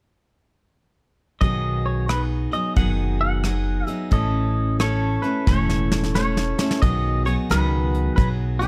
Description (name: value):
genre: honky-tonk and classic country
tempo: 89 BPM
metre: 4/4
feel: swing 65% on 8ths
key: B major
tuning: A4 = 438 Hz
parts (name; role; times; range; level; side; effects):
- twangy electric guitar; melody; 1.4-8.7 s; G#4 to F#5; -30 LUFS; equal; tape echo
- picked steel-string acoustic guitar; accompaniment; 1.4-8.7 s; A2 to A4; -27 LUFS; equal; none
- upright bass; bass; 1.4-8.7 s; E1 to C#2; -26 LUFS; equal; none
- soft brush drum kit; drums; 1.4-8.7 s; hi-hat, kick drum, rim click, snare drum; -24 LUFS; equal; none
room: little or no reverb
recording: close, detailed microphones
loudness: -22 LUFS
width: mono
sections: 1.4-6.8 A section; 6.8-8.7 B section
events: drum fill 5.5-6.8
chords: 1.4 B6; 4.1 A; 6.8 B6